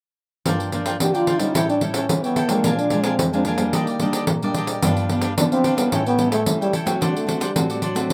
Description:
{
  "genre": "samba and choro",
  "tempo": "110 BPM",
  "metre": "4/4",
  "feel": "straight",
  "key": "unclear",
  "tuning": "A4 = 440 Hz",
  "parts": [
    { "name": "cavaquinho", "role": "accompaniment", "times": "0.5-8.1 s", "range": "D4 to Ab5", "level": "-31 LUFS", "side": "equal", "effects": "plate reverb" },
    { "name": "nylon-string guitar", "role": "accompaniment", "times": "0.5-8.1 s", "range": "F2 to F#4", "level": "-27 LUFS", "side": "equal", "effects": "plate reverb" },
    { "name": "pandeiro", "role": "percussion", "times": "0.5-8.1 s", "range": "none", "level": "-26 LUFS", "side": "equal", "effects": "none" },
    { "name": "growling trombone", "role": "melody", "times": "1.0-8.1 s", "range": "F#3 to G4", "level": "-24 LUFS", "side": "equal", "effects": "plate reverb" }
  ],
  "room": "wet small room reverb, RT60 0.5 s",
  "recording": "rough home demo mix",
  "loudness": "-21 LUFS",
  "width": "mono",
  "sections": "0.5-8.1 A section",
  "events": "none",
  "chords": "0.5 Gm7; 1.6 A7; 2.6 Bb7; 3.7 Ebmaj7; 4.8 G7; 5.9 A7; 7.0 D7",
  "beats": "| 0.46 1.00 1.55 2.10 | 2.64 3.19 3.74 4.28 | 4.83 5.37 5.92 6.46 | 7.01 7.56 8.10"
}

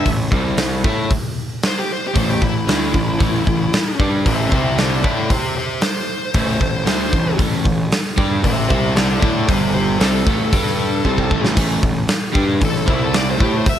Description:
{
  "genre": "hard rock",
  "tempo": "115 BPM",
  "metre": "4/4",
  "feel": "straight",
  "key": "A minor",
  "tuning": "A4 = 439 Hz",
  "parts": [
    { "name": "high-gain lead guitar", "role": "melody", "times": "0.0-13.8 s", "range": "E4 to E5", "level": "-23 LUFS", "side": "left 1 dB", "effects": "distortion, analog delay" },
    { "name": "overdriven semi-hollow guitar", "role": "riff", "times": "0.0-13.6 s", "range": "G2 to A4", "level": "-21 LUFS", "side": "equal", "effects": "none" },
    { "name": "fuzz picked electric bass", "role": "bass", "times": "0.0-13.6 s", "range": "G1 to A2", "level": "-21 LUFS", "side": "equal", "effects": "overdrive" },
    { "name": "big rock drum kit", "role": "drums", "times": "0.1-13.8 s", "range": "hi-hat, kick drum, snare drum, splash cymbal", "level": "-19 LUFS", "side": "equal", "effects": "none" }
  ],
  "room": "little or no reverb",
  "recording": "none",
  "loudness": "-15 LUFS",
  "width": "side -10 dB against mid",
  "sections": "0.0-13.8 A section",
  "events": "lead electric guitar solo 0.0-13.8; drum fill 11.0-11.6",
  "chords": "0.3 C5; 0.9 A5; 4.5 C5; 5.0 Am; 8.7 C5; 9.2 A5; 9.5 G5; 10.0 Am; 10.5 G5; 11.0 Am; 12.9 C5",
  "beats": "0.07 0.59 | 1.12 1.64 2.16 2.69 | 3.21 3.73 4.26 4.78 | 5.30 5.83 6.35 6.87 | 7.39 7.92 8.44 8.96 | 9.48 10.00 10.53 11.05 | 11.57 12.09 12.61 13.14 | 13.66"
}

